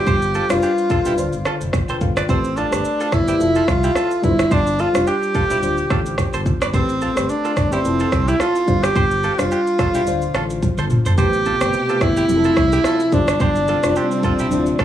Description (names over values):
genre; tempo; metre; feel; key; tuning
afrobeats; 108 BPM; 4/4; swing 55% on 16ths; unclear; A4 = 440 Hz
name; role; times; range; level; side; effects
clear tenor saxophone; melody; 0.0-14.8 s; C4 to G4; -19 LUFS; equal; cassette tape, tape echo
FM electric piano with tremolo; accompaniment; 0.0-14.8 s; D3 to G5; -24 LUFS; left 4 dB; cassette tape
direct-recorded clean electric guitar; riff; 0.1-14.8 s; D4 to D5; -28 LUFS; right 6 dB; cassette tape, tape echo
sub bass with octave; bass; 0.1-14.8 s; D1 to C2; -24 LUFS; equal; none
afro-pop drum kit; drums; 0.1-14.8 s; kick drum, rim click, shaker, toms; -21 LUFS; right 1 dB; none
warm studio string section; sustained chords; 11.2-14.8 s; B2 to G4; -25 LUFS; equal; cassette tape
congas and bongos; percussion; 11.2-14.7 s; none; -29 LUFS; right 11 dB; none
room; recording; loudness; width
light reverb; home recording on cassette, small room ambience; -16 LUFS; side -11 dB against mid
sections
0.0-11.2 A section; 11.2-14.8 B section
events
drum fill 10.6-11.2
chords
0.0 G7sus4; 1.2 Dm7; 2.3 Am9; 3.4 Fmaj7; 4.2 G7sus4; 5.6 Dm7; 6.7 Am9; 7.8 Fmaj7; 8.7 G7sus4; 10.1 Dm7; 11.2 Am9; 12.3 Fmaj7; 13.1 G7sus4